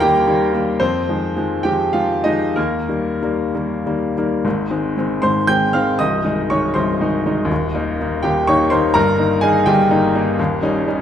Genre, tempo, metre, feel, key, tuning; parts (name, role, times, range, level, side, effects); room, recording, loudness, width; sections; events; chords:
classical, romantic character piece for solo piano; 61-86 BPM (dotted quarters); 6/8; rubato; Ab major; A4 = 440 Hz
clear baby grand piano; solo; 0.0-11.0 s; C1 to G6; -15 LUFS; equal
moderate recital hall reverb, RT60 1.6 s; -15 LUFS; side -9 dB against mid
0.0-4.5 A section; 4.5-11.0 B section
0.0 Eb; 0.8 Fm7; 2.6 Eb; 4.5 Ab; 6.0 Ab/C; 7.5 Eb; 9.0 Eb/G; 10.4 Eb7